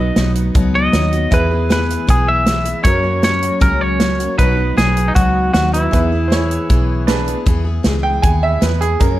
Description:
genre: honky-tonk and classic country.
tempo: 156 BPM.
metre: 4/4.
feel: straight.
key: E lydian.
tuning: A4 = 439 Hz.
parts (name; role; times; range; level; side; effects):
twangy electric guitar; melody; 0.0-7.0 s; D#4 to E5; -18 LUFS; equal; none.
bright concert grand piano; accompaniment; 0.0-7.4 s; C#4 to C#5; -26 LUFS; right 5 dB; none.
picked steel-string acoustic guitar; accompaniment; 0.0-9.2 s; F#2 to A#4; -21 LUFS; left 3 dB; none.
vintage muted fingered electric bass; bass; 0.0-9.2 s; B1 to F#2; -18 LUFS; equal; none.
natural country drum kit; drums; 0.2-9.1 s; hi-hat, kick drum, snare drum; -17 LUFS; equal; none.
bright upright piano; second line; 6.3-9.2 s; D4 to G#5; -20 LUFS; right 4 dB; none.
room: moderate recital hall reverb, RT60 1.4 s.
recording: dark, warm production.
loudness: -13 LUFS.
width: side -15 dB against mid.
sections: 0.0-7.5 A section; 7.5-9.2 B section.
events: upright piano solo 7.5-9.2.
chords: 0.0 B; 1.3 E; 2.9 F#; 4.4 B; 5.9 E.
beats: 0.16 0.55 0.93 | 1.32 1.70 2.08 2.47 | 2.85 3.24 3.62 4.01 | 4.39 4.78 5.16 5.54 | 5.93 6.31 6.70 7.08 | 7.47 7.85 8.24 8.62 | 9.01.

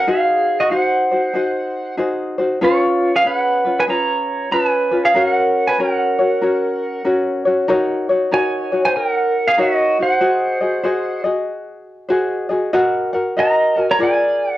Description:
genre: hawaiian.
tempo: 95 BPM.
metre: 4/4.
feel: swing 64% on 8ths.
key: F# major, Eb dorian from 7.7 s.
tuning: A4 = 440 Hz.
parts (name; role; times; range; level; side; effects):
pedal steel guitar; melody; 0.0-14.6 s; E#4 to A#5; -16 LUFS; right 1 dB; plate reverb.
tenor ukulele; accompaniment; 0.0-14.6 s; C#4 to Gb5; -18 LUFS; left 1 dB; cassette tape, plate reverb.
room: wet booth ambience, RT60 0.2 s.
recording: home recording on cassette.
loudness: -15 LUFS.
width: side -15 dB against mid.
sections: 0.0-7.7 A section; 7.7-14.6 B section.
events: none.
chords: 0.1 G#7; 2.6 C#7; 5.2 F#; 7.7 Ebm7; 10.2 Ab7; 12.7 Ebm; 14.0 Bb7.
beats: | 0.08 0.72 1.35 1.99 | 2.62 3.26 3.89 4.52 | 5.16 5.79 6.42 7.05 | 7.69 8.32 8.95 9.58 | 10.21 10.84 11.47 12.11 | 12.74 13.37 14.00.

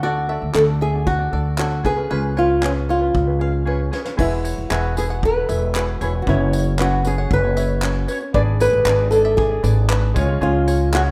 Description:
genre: acoustic pop.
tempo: 116 BPM.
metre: 4/4.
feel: straight.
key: unclear.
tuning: A4 = 440 Hz.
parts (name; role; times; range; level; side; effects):
flamenco guitar; melody; 0.0-11.0 s; C#4 to D5; -22 LUFS; equal; none.
ukulele; accompaniment; 0.0-11.1 s; C#4 to D5; -29 LUFS; equal; none.
bluegrass banjo; arpeggios; 0.0-11.1 s; B4 to F#5; -37 LUFS; equal; none.
upright bass; bass; 0.0-11.1 s; E1 to D2; -23 LUFS; equal; none.
soft brush drum kit; drums; 0.5-11.1 s; crash cymbal, handclaps, kick drum, snare drum, tambourine; -28 LUFS; equal; none.
bright concert grand piano; accompaniment; 4.2-11.1 s; G#3 to D5; -34 LUFS; equal; none.
room: light reverb, small room ambience.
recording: rough home demo mix.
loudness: -19 LUFS.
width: mono.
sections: 0.0-4.2 A section; 4.2-11.1 B section.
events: drum fill 3.7-4.2.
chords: 0.0 D; 1.8 C#7; 4.2 Eadd9; 6.3 Bsus2/F#; 8.3 G#dim; 10.2 C#.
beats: | 0.02 0.55 1.07 1.59 | 2.11 2.63 3.15 3.67 | 4.19 4.71 5.23 5.75 | 6.27 6.79 7.30 7.83 | 8.34 8.86 9.38 9.90 | 10.42 10.94.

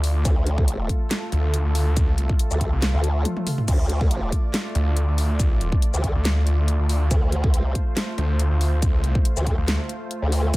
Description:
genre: heavy wobble dubstep.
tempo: 140 BPM.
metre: 4/4.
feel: swing 53% on 16ths, half-time.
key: D minor.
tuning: A4 = 440 Hz.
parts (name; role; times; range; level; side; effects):
supersaw pad; sustained chords; 0.0-10.6 s; A3 to D5; -31 LUFS; right 1 dB; vintage 12-bit sampler grit, sidechain pumping, low-pass filter.
snarling distorted saw bass; bass; 0.0-9.8 s; C2 to D2; -20 LUFS; equal; distortion, overdrive.
dubstep drum kit; drums; 0.0-10.6 s; crash cymbal, handclaps, hi-hat, shaker, snare drum, toms; -27 LUFS; left 1 dB; none.
formant-sweep wobble bass; bass; 0.3-10.6 s; D2; -22 LUFS; equal; chorus, overdrive.
electronic kick drum; drums; 0.3-10.6 s; none; -21 LUFS; equal; none.
room: little or no reverb.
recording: none.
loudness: -19 LUFS.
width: side -20 dB against mid.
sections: 0.0-10.6 A section.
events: break 3.3-3.7; drum fill 3.3-3.7.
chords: 0.0 Dm.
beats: | 0.25 0.68 1.11 1.54 | 1.97 2.40 2.82 3.25 | 3.68 4.11 4.54 4.97 | 5.39 5.82 6.25 6.68 | 7.11 7.54 7.97 8.39 | 8.82 9.25 9.68 10.11 | 10.54.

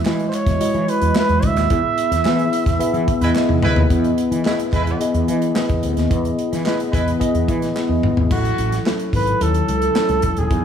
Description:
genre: polished 1980s jazz-funk pop.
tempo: 109 BPM.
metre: 4/4.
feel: straight.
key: E major.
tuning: A4 = 441 Hz.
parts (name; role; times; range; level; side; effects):
breathy flugelhorn; melody; 0.0-3.4, 8.3-10.6 s; F#4 to E5; -21 LUFS; right 3 dB; none.
mellow tine electric piano; accompaniment; 0.0-10.6 s; F#3 to E5; -20 LUFS; left 2 dB; analog chorus.
fretless electric bass; bass; 0.1-10.6 s; D#1 to E3; -21 LUFS; right 1 dB; none.
modern studio drum kit; drums; 0.1-10.6 s; crash cymbal, hi-hat, kick drum, snare drum, toms; -22 LUFS; equal; none.
group handclap; percussion; 0.1-10.1 s; none; -38 LUFS; right 4 dB; none.
warm horn section; second line; 3.2-7.1 s; G#3 to B4; -26 LUFS; right 4 dB; none.
room: studio reverb.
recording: small room ambience, faint mains hum.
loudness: -16 LUFS.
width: side -8 dB against mid.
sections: 0.0-3.9 A section; 3.9-8.3 B section; 8.3-10.6 C section.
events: band accent 1.7-3.9; drum fill 3.4-3.9, 7.8-8.3.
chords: 0.0 Emaj9; 1.7 Emaj7; 8.3 A6.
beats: 0.06 0.61 1.16 | 1.71 2.26 2.81 3.36 | 3.91 4.46 5.01 5.56 | 6.11 6.66 7.21 7.76 | 8.31 8.86 9.41 9.96 | 10.51.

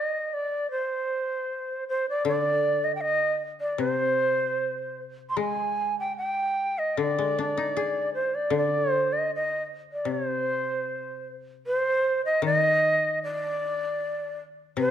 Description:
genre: japanese traditional, Japanese chamber music.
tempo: 76 BPM.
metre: 2/4.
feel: rubato.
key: C hirajoshi.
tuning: A4 = 439 Hz.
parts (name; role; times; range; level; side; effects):
breathy reedy shakuhachi; melody; 0.0-14.9 s; C5 to C6; -25 LUFS; right 1 dB; none.
koto; accompaniment; 2.2-14.9 s; C3 to Ab4; -30 LUFS; left 5 dB; none.
room: moderate scoring stage reverb, RT60 1.5 s.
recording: dark, warm production.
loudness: -24 LUFS.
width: side -9 dB against mid.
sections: 0.0-11.7 A section; 11.7-14.9 B section.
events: none.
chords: none.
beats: | 0.69 1.48 | 2.25 3.02 | 3.79 4.59 | 5.39 6.19 | 6.98 7.76 | 8.53 9.30 | 10.07 10.87 | 11.66 12.45 | 13.23 14.01 | 14.79.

